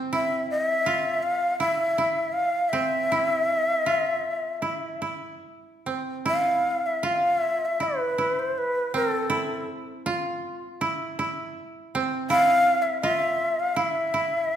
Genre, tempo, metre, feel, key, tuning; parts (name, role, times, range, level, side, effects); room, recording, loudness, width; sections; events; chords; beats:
japanese traditional, Japanese chamber music; 80 BPM; 4/4; rubato; E miyako bushi; A4 = 440 Hz
koto; second line; 0.0-14.6 s; C4 to F4; -28 LUFS; right 2 dB
breathy shakuhachi; melody; 0.1-14.6 s; A4 to F5; -23 LUFS; left 1 dB
moderate scoring stage reverb, RT60 1.6 s; recorded in a church or concert hall; -22 LUFS; side -10 dB against mid
0.0-6.3 A section; 6.3-14.6 B section
| 0.12 0.85 1.59 2.33 | 3.09 3.85 4.62 5.45 | 6.26 7.04 7.81 8.57 | 9.32 10.07 10.82 11.55 | 12.29 13.03 13.77 14.53